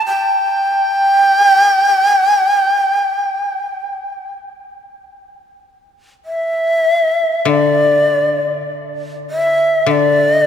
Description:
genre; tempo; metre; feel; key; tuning
japanese traditional, Japanese chamber music; 50 BPM; 4/4; rubato; unclear; A4 = 440 Hz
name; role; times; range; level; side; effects
breathy bright long shakuhachi; melody; 0.0-10.5 s; D5 to G5; -12 LUFS; equal; none
koto; accompaniment; 7.5-10.5 s; D3; -19 LUFS; left 7 dB; none
room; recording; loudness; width
wet cathedral reverb, RT60 4.7 s; none; -12 LUFS; side -8 dB against mid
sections
0.0-5.0 A section; 5.0-10.5 B section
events
none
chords
none

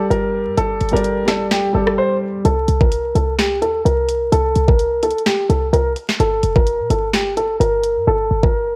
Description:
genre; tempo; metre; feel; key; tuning
hip hop, trap; 128 BPM; 4/4; half-time; unclear; A4 = 442 Hz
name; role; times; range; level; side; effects
dark grand piano; melody; 0.0-8.8 s; G4 to C5; -20 LUFS; equal; low-pass filter, cassette tape
felt-muted upright piano; accompaniment; 0.0-2.5 s; G3 to D5; -23 LUFS; equal; low-pass filter, cassette tape
short 808-style bass; bass; 0.0-8.8 s; F1 to Bb2; -23 LUFS; equal; none
trap drum kit; drums; 0.1-8.5 s; hi-hat, kick drum, rim click, snare drum; -21 LUFS; equal; cassette tape
room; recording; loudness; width
light reverb, studio reverb; home recording on cassette, vinyl crackle; -17 LUFS; mono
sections
0.0-2.4 A section; 2.4-8.8 B section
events
break 2.0-2.4; hi-hats muted 8.1-8.8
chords
0.0 Gsus2; 2.4 C7(no3); 6.2 Fadd9

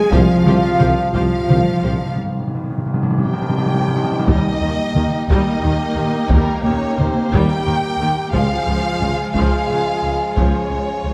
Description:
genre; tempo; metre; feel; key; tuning
cinematic, epic orchestral film score; 59 BPM (dotted quarters); 6/8; straight; unclear; A4 = 440 Hz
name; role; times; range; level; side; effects
warm symphonic violin section; second line; 0.0-11.1 s; Ab3 to Ab5; -31 LUFS; equal; none
dark French horn section; sustained chords; 0.0-11.1 s; Bb3 to G4; -27 LUFS; equal; none
rich symphonic cello section; bass; 0.0-11.1 s; Db2 to Ab3; -26 LUFS; equal; none
warm symphonic violin section; melody; 0.1-11.1 s; Bb4 to G5; -28 LUFS; equal; none
warm symphonic viola section; accompaniment; 0.1-11.1 s; Db3 to G4; -26 LUFS; equal; none
bright trombone section; sustained chords; 0.1-11.1 s; C3 to Bb3; -32 LUFS; equal; none
mellow tuba; bass; 0.1-11.1 s; C2 to Eb2; -26 LUFS; equal; none
warm symphonic double bass section; bass; 0.1-11.1 s; C2 to Eb2; -26 LUFS; equal; none
taiko ensemble; drums; 0.1-11.0 s; none; -23 LUFS; equal; none
timpani; percussion; 0.1-4.3 s; C3; -23 LUFS; equal; none
dark trumpet; stabs; 4.3-11.1 s; G4 to Ab4; -27 LUFS; equal; none
room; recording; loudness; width
wet concert hall reverb, RT60 2.2 s; none; -18 LUFS; mono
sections
0.0-4.3 A section; 4.3-11.1 B section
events
timpani fill 0.1-4.3; break 2.2-4.3; drum fill 3.2-4.3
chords
0.1 Csus4; 4.3 Eb; 8.3 Db

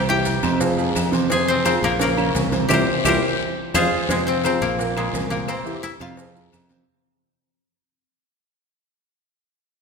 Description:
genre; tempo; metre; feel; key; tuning
latin, salsa; 172 BPM; 4/4; straight; F harmonic minor; A4 = 440 Hz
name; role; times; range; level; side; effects
koto; melody; 0.0-8.2 s; Ab3 to Ab5; -22 LUFS; left 3 dB; none
bright baby grand piano; accompaniment; 0.0-6.8 s; Bb2 to Db5; -24 LUFS; right 2 dB; none
modern bright fingered electric bass; bass; 0.0-6.8 s; Bb1 to F2; -25 LUFS; equal; none
congas; percussion; 0.1-6.9 s; none; -31 LUFS; equal; none
maracas; percussion; 0.1-6.9 s; none; -35 LUFS; right 6 dB; none
cowbell; percussion; 0.3-6.9 s; none; -31 LUFS; left 2 dB; none
guiro; percussion; 0.3-6.9 s; none; -35 LUFS; left 6 dB; none
timbales and agogo bells; percussion; 0.3-6.7 s; none; -31 LUFS; right 1 dB; none
claves; percussion; 0.4-6.7 s; none; -33 LUFS; left 8 dB; none
room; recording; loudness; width
wet concert hall reverb, RT60 1.9 s; recorded in a church or concert hall; -18 LUFS; side -5 dB against mid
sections
0.0-4.1 A section; 4.1-6.9 B section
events
band accent 2.7-4.1; drum fill 3.4-4.1; fade-out 4.1-6.9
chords
0.0 C; 0.6 Fm; 2.0 Bbm; 2.7 C7; 3.4 Fm; 4.8 Abadd9/Bb; 5.5 C7; 6.2 Fm

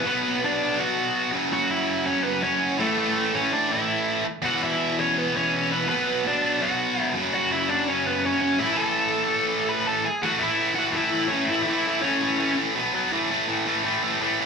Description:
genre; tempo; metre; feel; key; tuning
punk; 165 BPM; 4/4; straight; A major; A4 = 440 Hz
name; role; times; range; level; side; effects
smooth overdriven lead guitar; melody; 0.0-12.6 s; A3 to B5; -24 LUFS; left 1 dB; none
tight distorted guitar; riff; 0.0-14.5 s; E2 to B3; -24 LUFS; right 1 dB; distortion
room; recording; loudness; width
digital ambience; live gig heard through the venue's PA, club reverb; -21 LUFS; side -5 dB against mid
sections
0.0-10.2 A section; 10.2-14.5 B section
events
none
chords
0.1 Bm; 1.3 F#5; 2.8 A; 4.4 E5; 5.9 Bm; 7.2 F#5; 8.6 A5; 12.8 B5; 13.1 A5

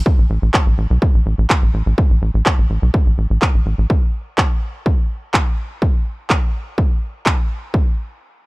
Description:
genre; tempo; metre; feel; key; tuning
melodic techno; 125 BPM; 4/4; straight; unclear; A4 = 441 Hz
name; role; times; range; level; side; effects
tight sequencer bass; bass; 0.0-3.9 s; A1 to B1; -16 LUFS; equal; sidechain pumping
electronic kick drum; drums; 0.1-7.8 s; none; -16 LUFS; equal; none
electronic handclaps; drums; 0.5-7.4 s; none; -20 LUFS; equal; sidechain pumping on hats
room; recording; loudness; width
little or no reverb; dry, gritty hardware recording; -15 LUFS; side -24 dB against mid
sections
0.0-7.7 A section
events
none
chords
none

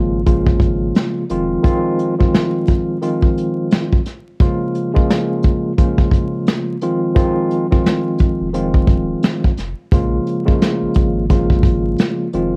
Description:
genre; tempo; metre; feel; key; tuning
hip hop, boom-bap hip-hop; 87 BPM; 4/4; swing 59% on 16ths; Bb minor; A4 = 440 Hz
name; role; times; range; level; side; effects
tine electric piano; accompaniment; 0.0-12.6 s; Db3 to F4; -20 LUFS; equal; cassette tape, high-pass filter, low-pass filter, plate reverb
saturated sub bass; bass; 0.0-1.6, 8.4-12.6 s; Eb1 to Bb1; -25 LUFS; equal; none
vintage brush drum kit; drums; 0.3-12.5 s; hi-hat, kick drum, snare drum; -17 LUFS; equal; cassette tape
room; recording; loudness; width
light reverb; home recording on cassette, vinyl crackle; -17 LUFS; mono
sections
0.0-12.6 A section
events
none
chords
0.0 Bbm7; 1.3 Fm7; 4.4 Bbm7; 6.8 Fm7; 9.9 Bbm7

